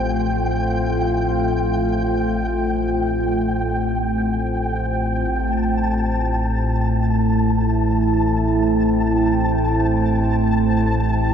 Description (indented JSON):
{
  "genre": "ambient",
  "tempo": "free time",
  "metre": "none",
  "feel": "none",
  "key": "A minor",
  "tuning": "A4 = 440 Hz",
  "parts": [
    { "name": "deep dark ambient pad", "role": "sustained chords", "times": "0.0-11.3 s", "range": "A3 to G5", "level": "-20 LUFS", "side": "equal", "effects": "chorus, built-in reverb" },
    { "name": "deep rumbling drone", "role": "drone", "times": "0.0-11.3 s", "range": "A1 to A2", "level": "-22 LUFS", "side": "equal", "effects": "built-in reverb" },
    { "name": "flickering grainy texture", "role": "texture", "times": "0.0-11.3 s", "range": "G5 to A5", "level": "-26 LUFS", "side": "equal", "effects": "built-in reverb" }
  ],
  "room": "wet huge ambient reverb, RT60 7.2 s",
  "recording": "in a vast, echoing space",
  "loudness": "-17 LUFS",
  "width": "side -8 dB against mid",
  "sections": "0.0-5.3 A section; 5.3-11.3 B section",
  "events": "none",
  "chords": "0.0 Fadd9; 5.3 Am7",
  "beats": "free time"
}